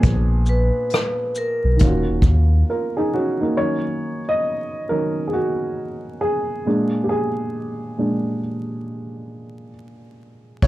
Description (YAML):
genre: lo-fi hip hop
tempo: 68 BPM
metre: 4/4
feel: swing 62% on 16ths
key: Eb minor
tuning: A4 = 440 Hz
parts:
  - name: dark upright piano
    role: accompaniment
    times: 0.0-10.7 s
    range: Bb2 to Eb5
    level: -22 LUFS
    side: right 1 dB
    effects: low-pass filter
  - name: sub bass with octave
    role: bass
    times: 0.0-2.6 s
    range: Eb1 to Eb2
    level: -17 LUFS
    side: equal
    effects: none
  - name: vintage brush drum kit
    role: drums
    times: 0.0-2.5, 10.6-10.7 s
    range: hi-hat, kick drum, rim click, shaker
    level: -18 LUFS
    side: equal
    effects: none
  - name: vibraphone with medium hard mallets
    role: melody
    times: 0.5-2.0 s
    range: Bb4 to Cb5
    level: -24 LUFS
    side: equal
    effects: low-pass filter, plate reverb
room: light reverb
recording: dark, warm production, vinyl crackle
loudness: -18 LUFS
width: side -16 dB against mid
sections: 0.0-3.6 A section; 3.6-10.7 B section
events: break 2.7-3.6; upright piano solo 3.6-10.7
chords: 0.0 Bb7b9; 1.8 Ebm9; 3.6 Ebm7; 6.7 Bb7